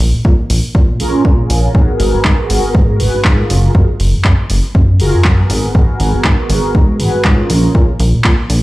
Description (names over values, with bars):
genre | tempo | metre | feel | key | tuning
filtered disco house | 120 BPM | 4/4 | swing 56% on 16ths | G# dorian | A4 = 442 Hz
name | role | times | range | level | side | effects
plucky analog bass | bass | 0.0-8.6 s | F#1 to A#2 | -13 LUFS | equal | sidechain pumping, low-pass filter
punchy analog drum machine | drums | 0.0-8.6 s | handclaps, hi-hat | -19 LUFS | equal | sidechain pumping on hats
electronic kick drum | drums | 0.2-8.4 s | none | -11 LUFS | equal | none
mellow synth brass | accompaniment | 1.0-7.9 s | B3 to B4 | -17 LUFS | right 1 dB | chorus, phaser, cassette tape, sidechain pumping, low-pass filter
room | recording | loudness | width
little or no reverb | played on a big sound system in a bare room, large studio reverb | -10 LUFS | side -18 dB against mid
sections
0.0-8.6 A section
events
none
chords
0.0 A#m7; 1.8 G#m9; 3.5 F#maj9; 5.5 G#m9; 7.5 A#m7